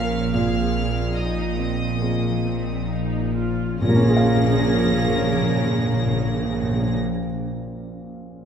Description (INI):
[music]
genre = cinematic, emotional film score for orchestra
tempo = 65-75 BPM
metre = 4/4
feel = rubato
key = Bb minor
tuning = A4 = 439 Hz
[part]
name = warm studio violin section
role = melody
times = 0.0-7.0 s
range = Eb6 to Bb6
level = -32 LUFS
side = left 1 dB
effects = none
[part]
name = warm studio violin section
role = second line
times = 0.0-7.0 s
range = Bb4 to F5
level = -33 LUFS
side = left 2 dB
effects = none
[part]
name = felt-muted upright piano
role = accompaniment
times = 0.0-8.4 s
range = Bb2 to F5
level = -25 LUFS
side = right 1 dB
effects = none
[part]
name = warm studio viola section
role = accompaniment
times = 0.0-7.0 s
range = Bb3 to Bb4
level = -29 LUFS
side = right 1 dB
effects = none
[part]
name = concert harp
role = arpeggios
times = 0.0-7.7 s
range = Bb2 to F5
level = -31 LUFS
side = left 9 dB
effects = none
[part]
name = rich studio double bass section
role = bass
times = 0.0-7.0 s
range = Bb1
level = -26 LUFS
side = right 2 dB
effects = none
[part]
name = warm studio cello section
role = bass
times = 0.0-7.0 s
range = Bb2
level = -28 LUFS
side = right 3 dB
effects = none
[part]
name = timpani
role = percussion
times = 3.8-7.0 s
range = Bb2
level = -24 LUFS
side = equal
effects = none
[sound]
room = wet scoring stage reverb, RT60 2.0 s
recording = minimal, uncompressed stereo recording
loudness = -19 LUFS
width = side -8 dB against mid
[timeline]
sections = 0.0-3.8 A section; 3.8-7.4 B section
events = slowing down 0.0-3.8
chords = 0.3 Fm7/Bb; 3.8 Bbm7